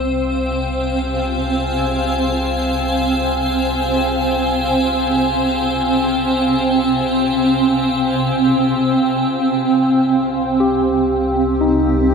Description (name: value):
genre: ambient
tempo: free time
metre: none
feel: none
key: unclear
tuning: A4 = 441 Hz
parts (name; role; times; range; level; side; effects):
- granular cloud pad; sustained chords; 0.0-12.1 s; C4 to Ab5; -15 LUFS; right 1 dB; built-in reverb
- warm sub bass; bass; 0.0-12.1 s; C2; -27 LUFS; left 1 dB; none
- barky tine electric piano; arpeggios; 10.6-12.1 s; Eb4 to G4; -19 LUFS; left 1 dB; auto-pan
room: wet huge ambient reverb, RT60 7.2 s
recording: in a vast, echoing space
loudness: -15 LUFS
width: side -5 dB against mid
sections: 0.0-9.6 A section; 9.6-12.1 B section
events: fade-out on sub bass 0.0-9.6; filter sweep on ambient pad 9.6-12.1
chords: 0.0 Fmadd9/C; 9.6 Cm7